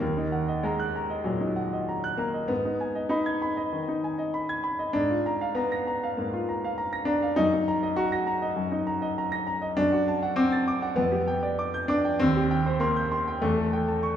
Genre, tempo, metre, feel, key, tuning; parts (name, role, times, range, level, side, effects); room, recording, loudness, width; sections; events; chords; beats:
classical, virtuoso piano study; 98 BPM; 4/4; rubato; Eb minor; A4 = 441 Hz
clear grand piano; solo; 0.0-14.2 s; Eb2 to Bb6; -24 LUFS; equal
wet recital hall reverb, RT60 1.5 s; heard from further back in the room; -24 LUFS; side -9 dB against mid
0.0-14.2 A section
0.0 Ebm; 2.5 Abm; 4.9 Bb7/Ab; 7.4 Ebm/Gb; 9.8 D/F#; 11.0 G7/F; 12.2 Cm/Eb; 13.4 A7/E
| 0.01 0.63 1.25 1.87 | 2.50 3.11 3.72 4.33 | 4.94 5.55 6.16 6.77 | 7.37 7.98 8.58 9.18 | 9.78 10.38 10.98 11.59 | 12.20 12.81 13.43 14.04